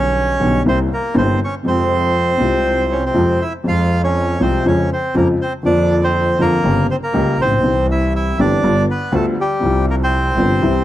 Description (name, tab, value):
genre	tango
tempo	120 BPM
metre	4/4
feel	rubato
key	F harmonic minor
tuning	A4 = 439 Hz
part	bandoneon	melody	0.0-10.8 s	G3 to F5	-18 LUFS	right 1 dB	none
part	dark upright piano	accompaniment	0.0-10.8 s	G1 to G4	-18 LUFS	left 1 dB	none
part	clear double bass	bass	0.0-10.8 s	G1 to F2	-20 LUFS	right 1 dB	none
room	studio ambience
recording	dry, close 1970s-style studio recording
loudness	-14 LUFS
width	side -13 dB against mid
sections	0.0-3.7 A section; 3.7-10.8 A section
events	none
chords	0.0 G/B; 0.7 C7; 1.7 Fm; 4.7 Db/F; 5.7 Bb/F; 6.6 Gdim; 7.6 C; 8.6 G7; 9.6 Csus4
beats	0.16 0.66 1.15 | 1.65 2.15 2.65 3.15 | 3.65 4.16 4.65 5.15 | 5.65 6.15 6.65 7.14 | 7.64 8.14 8.63 9.13 | 9.63 10.12 10.62